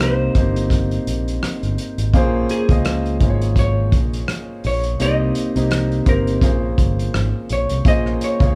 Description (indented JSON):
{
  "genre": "R&B, neo-soul",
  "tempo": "84 BPM",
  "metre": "4/4",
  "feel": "swing 56% on 16ths",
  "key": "Bb dorian",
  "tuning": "A4 = 441 Hz",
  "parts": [
    { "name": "vintage hollow-body jazz guitar", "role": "melody", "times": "0.0-8.6 s", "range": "Ab4 to Eb5", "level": "-26 LUFS", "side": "equal", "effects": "none" },
    { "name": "clear concert grand piano", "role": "accompaniment", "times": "0.0-8.6 s", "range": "Bb3 to Eb5", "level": "-25 LUFS", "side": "equal", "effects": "none" },
    { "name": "fingered electric bass", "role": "bass", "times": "0.0-8.6 s", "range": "G1 to Db2", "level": "-23 LUFS", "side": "equal", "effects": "none" },
    { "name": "warm soul drum kit", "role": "drums", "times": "0.0-8.6 s", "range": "hi-hat, kick drum, rim click", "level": "-21 LUFS", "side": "equal", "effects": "none" }
  ],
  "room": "light reverb",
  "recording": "band playing live in one room",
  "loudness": "-19 LUFS",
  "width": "mono",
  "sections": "0.0-7.8 A section",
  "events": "none",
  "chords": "0.0 Cm7; 2.1 Bbm9; 5.0 Cm7; 6.4 Bbm7; 7.8 Bbm9"
}